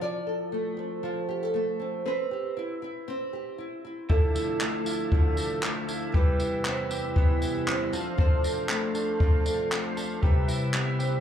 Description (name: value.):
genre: acoustic pop.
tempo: 118 BPM.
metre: 4/4.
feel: swing 55% on 16ths.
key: C major.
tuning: A4 = 443 Hz.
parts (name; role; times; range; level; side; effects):
nylon-string guitar; accompaniment; 0.0-11.2 s; C3 to D5; -29 LUFS; equal; double-tracked left and right, plate reverb, slapback echo.
tonewheel organ; sustained chords; 4.1-11.2 s; E2 to F5; -35 LUFS; left 1 dB; overdrive, lush chorus.
direct-recorded clean electric guitar; arpeggios; 4.1-11.2 s; F3 to A4; -35 LUFS; right 5 dB; plate reverb, slapback echo.
jazz brush drum kit; drums; 4.1-11.1 s; handclaps, kick drum, tambourine; -25 LUFS; equal; none.
room: light reverb.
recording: live gig heard through the venue's PA, club reverb.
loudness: -25 LUFS.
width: side -9 dB against mid.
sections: 0.0-11.2 A section.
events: none.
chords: 0.0 F6; 2.1 Cmaj7; 4.1 Dmadd9; 6.1 Cmaj7/E; 7.9 F6; 10.2 Cmaj7.